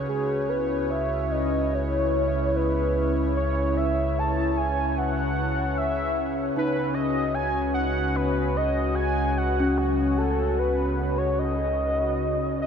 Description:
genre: ambient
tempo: 75 BPM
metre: 4/4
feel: straight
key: C# minor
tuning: A4 = 441 Hz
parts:
  - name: warm analog pad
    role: sustained chords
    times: 0.0-12.7 s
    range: C#3 to C#5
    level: -26 LUFS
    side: left 1 dB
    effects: chorus
  - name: worn celesta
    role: arpeggios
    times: 0.0-12.7 s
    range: C#4 to C#5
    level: -34 LUFS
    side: left 1 dB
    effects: none
  - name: warm sub bass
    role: bass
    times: 0.0-12.7 s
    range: C#2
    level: -29 LUFS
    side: equal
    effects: none
  - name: overtone-sweeping drone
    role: drone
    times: 0.0-12.7 s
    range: C#3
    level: -43 LUFS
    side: right 2 dB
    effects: none
  - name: warm velvety synth lead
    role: melody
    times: 0.1-12.7 s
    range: F#4 to A5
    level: -27 LUFS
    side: equal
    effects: chorus, cassette tape, diffuse ambient delay
room: moderate huge ambient reverb, RT60 8.5 s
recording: none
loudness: -22 LUFS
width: side -7 dB against mid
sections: 0.0-12.7 A section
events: none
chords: 0.1 C#m7; 6.5 B/C#

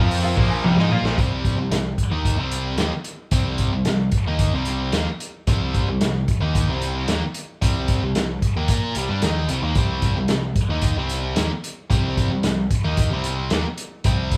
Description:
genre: classic rock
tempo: 112 BPM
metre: 4/4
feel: straight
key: C minor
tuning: A4 = 439 Hz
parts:
  - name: tack piano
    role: accompaniment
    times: 0.0-1.1 s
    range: F4 to Bb5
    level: -34 LUFS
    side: equal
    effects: none
  - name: tonewheel organ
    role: sustained chords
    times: 0.0-1.1 s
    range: F3 to Bb4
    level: -39 LUFS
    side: equal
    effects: none
  - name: cranked stack guitar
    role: riff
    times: 0.0-1.2 s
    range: Bb2 to F4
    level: -30 LUFS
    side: equal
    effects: overdrive
  - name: distorted electric guitar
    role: riff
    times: 0.0-14.4 s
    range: Bb2 to Bb4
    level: -31 LUFS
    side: equal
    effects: distortion
  - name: tight distorted guitar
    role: riff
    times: 0.0-14.4 s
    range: Bb2 to Bb4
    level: -29 LUFS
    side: equal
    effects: distortion
  - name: growling picked electric bass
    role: bass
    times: 0.0-14.4 s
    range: Bb1 to Bb2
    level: -29 LUFS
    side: equal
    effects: overdrive
  - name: vintage drum kit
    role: drums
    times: 0.1-14.4 s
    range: hi-hat, kick drum, snare drum, toms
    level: -24 LUFS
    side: equal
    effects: none
room: light reverb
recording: band playing live in one room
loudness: -22 LUFS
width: mono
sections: 0.0-1.2 A section; 1.2-14.4 B section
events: honky-tonk piano fill 0.0-1.2; drum fill 0.6-1.2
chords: 0.0 Bb5; 1.2 Cm

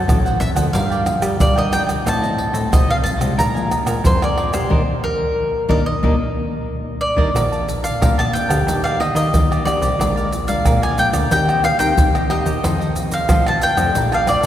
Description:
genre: samba and choro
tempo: 91 BPM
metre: 4/4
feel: straight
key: Eb major, Bb major from 7.4 s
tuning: A4 = 440 Hz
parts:
  - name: mandolin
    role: melody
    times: 0.0-14.4 s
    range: Bb4 to Bb5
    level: -20 LUFS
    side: equal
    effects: none
  - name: cavaquinho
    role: accompaniment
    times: 0.0-14.5 s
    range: D4 to A5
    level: -28 LUFS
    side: right 3 dB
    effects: none
  - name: nylon-string guitar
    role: accompaniment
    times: 0.0-14.5 s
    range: F2 to A4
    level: -25 LUFS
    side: left 3 dB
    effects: none
  - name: plucky analog bass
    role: bass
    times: 0.0-14.5 s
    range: A1 to G3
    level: -22 LUFS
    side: equal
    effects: none
  - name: egg shaker, surdo, pandeiro and tamborim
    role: percussion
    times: 0.1-14.5 s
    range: none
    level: -20 LUFS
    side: equal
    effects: none
room: wet cathedral reverb, RT60 4.3 s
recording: recorded in a church or concert hall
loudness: -15 LUFS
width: side -11 dB against mid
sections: 0.0-7.4 A section; 7.4-14.5 B section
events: band accent 4.7-7.4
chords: 0.0 D7; 0.7 Gm7; 2.1 F7/A; 3.4 Bb7; 4.7 Eb5; 7.4 Bbmaj7; 8.7 Ebmaj7; 10.0 Bb7; 11.3 Eb6; 12.6 F7; 14.0 Bbmaj7

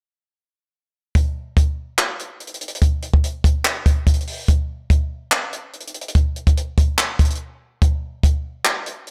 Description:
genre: hip hop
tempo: 144 BPM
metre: 4/4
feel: half-time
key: none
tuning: none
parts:
  - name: compact cocktail drum kit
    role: drums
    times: 1.2-9.1 s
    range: handclaps, hi-hat, kick drum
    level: -19 LUFS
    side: equal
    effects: none
room: little or no reverb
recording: dark, warm production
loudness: -20 LUFS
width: mono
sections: 1.2-9.1 A section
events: break 7.4-7.8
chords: none

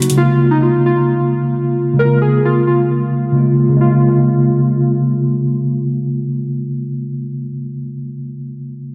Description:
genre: hip hop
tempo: 132 BPM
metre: 4/4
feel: half-time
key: Bb minor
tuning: A4 = 440 Hz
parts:
  - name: warbly lo-fi synth keys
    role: melody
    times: 0.0-5.1 s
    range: Eb4 to Bb4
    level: -21 LUFS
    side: equal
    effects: chorus, low-pass filter, analog delay
  - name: mellow tine electric piano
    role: accompaniment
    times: 0.0-8.9 s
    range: Db3 to F4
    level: -16 LUFS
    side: equal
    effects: low-pass filter
room: wet church reverb, RT60 3.2 s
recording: dreamy mix soaked in reverb, low-pass filter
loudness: -15 LUFS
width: mono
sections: 0.2-3.8 A section; 3.8-7.4 B section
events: filter sweep 0.2-3.8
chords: 0.2 Bbm7

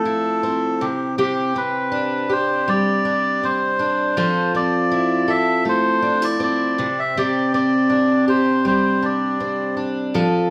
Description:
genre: pop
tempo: 80 BPM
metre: 4/4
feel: straight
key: C major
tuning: A4 = 442 Hz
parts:
  - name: melodica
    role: melody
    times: 0.0-9.8 s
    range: G4 to E5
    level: -23 LUFS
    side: equal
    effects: none
  - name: fingerpicked twelve-string acoustic guitar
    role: accompaniment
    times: 0.0-10.5 s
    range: C3 to A4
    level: -22 LUFS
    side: equal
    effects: none
room: moderate large studio reverb, RT60 0.8 s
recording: band playing live in one room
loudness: -20 LUFS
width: mono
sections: 0.0-10.5 A section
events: none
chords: 0.0 Fmaj7; 0.8 Csus2; 4.2 Fmaj7; 6.8 Csus2

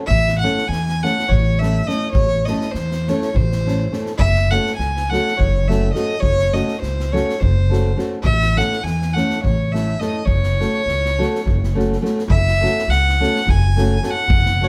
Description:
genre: balkan folk, Balkan wedding band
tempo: 207 BPM (eighths)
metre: 7/8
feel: straight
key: F# dorian sharp4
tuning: A4 = 438 Hz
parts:
  - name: nylon-string guitar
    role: accompaniment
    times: 0.0-14.7 s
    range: A3 to A4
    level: -25 LUFS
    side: equal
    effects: none
  - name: warm violin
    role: melody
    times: 0.1-14.7 s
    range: B#4 to G#5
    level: -24 LUFS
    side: equal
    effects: none
  - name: upright bass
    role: bass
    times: 0.1-14.6 s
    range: F#1 to E2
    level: -22 LUFS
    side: equal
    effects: none
  - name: street-band drum kit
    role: percussion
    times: 0.1-14.5 s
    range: kick drum, snare drum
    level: -26 LUFS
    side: equal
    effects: none
room: moderate studio reverb, RT60 0.7 s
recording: band playing live in one room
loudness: -18 LUFS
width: mono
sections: 0.0-12.3 A section; 12.3-14.7 A section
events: none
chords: 0.1 A; 4.2 F#m; 8.3 A; 10.3 F#m

